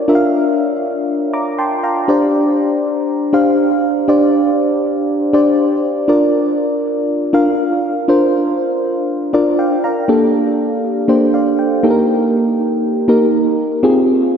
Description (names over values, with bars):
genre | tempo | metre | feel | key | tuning
pop | 120 BPM | 4/4 | straight | Bb major | A4 = 439 Hz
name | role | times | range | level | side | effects
mellow FM electric piano | solo | 0.0-14.4 s | Bb3 to D6 | -12 LUFS | equal | chorus, tape echo
room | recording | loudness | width
wet lush hall reverb, RT60 2.9 s | dreamy mix soaked in reverb | -12 LUFS | side -7 dB against mid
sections
0.0-10.1 A section; 10.1-14.4 B section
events
FM electric piano fill 1.1-2.1, 9.1-10.1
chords
0.0 Bb; 2.1 Csus2; 10.1 Gmadd9; 11.8 Eb; 13.8 Fmadd9